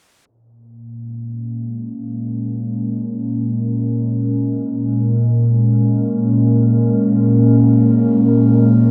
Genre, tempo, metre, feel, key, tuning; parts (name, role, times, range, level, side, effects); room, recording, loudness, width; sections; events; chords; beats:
ambient; free time; Bb minor; A4 = 440 Hz
warbly tape-like pad; sustained chords; 0.3-8.9 s; Bb2 to Bb4; -16 LUFS; equal; chorus, built-in reverb
moderate scoring stage reverb, RT60 1.9 s; dark, warm production, low-pass filter; -16 LUFS; mono
0.3-8.9 A section
fade-in on ambient pad 0.3-8.9
0.3 Bbm7
free time